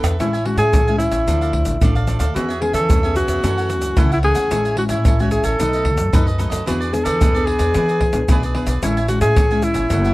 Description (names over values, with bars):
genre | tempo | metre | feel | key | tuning
samba and choro | 111 BPM | 4/4 | straight | A major | A4 = 445 Hz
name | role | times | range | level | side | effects
cavaquinho | accompaniment | 0.0-10.1 s | D4 to G#5 | -28 LUFS | right 3 dB | none
nylon-string guitar | accompaniment | 0.0-10.1 s | F#2 to A4 | -25 LUFS | left 2 dB | none
upright bass | bass | 0.0-10.1 s | F#1 to E3 | -21 LUFS | equal | none
egg shaker, pandeiro, tamborim and surdo | percussion | 0.0-10.1 s | none | -20 LUFS | equal | none
breathy alto saxophone | melody | 0.2-10.1 s | E4 to A4 | -20 LUFS | equal | none
room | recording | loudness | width
light reverb | dry, close 1970s-style studio recording | -15 LUFS | side -18 dB against mid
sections
0.2-10.1 A section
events
none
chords
0.2 Amaj7; 1.3 Dm; 2.4 E6; 3.4 F#m7; 4.5 Amaj7; 5.6 B7; 6.7 E7; 8.8 Amaj7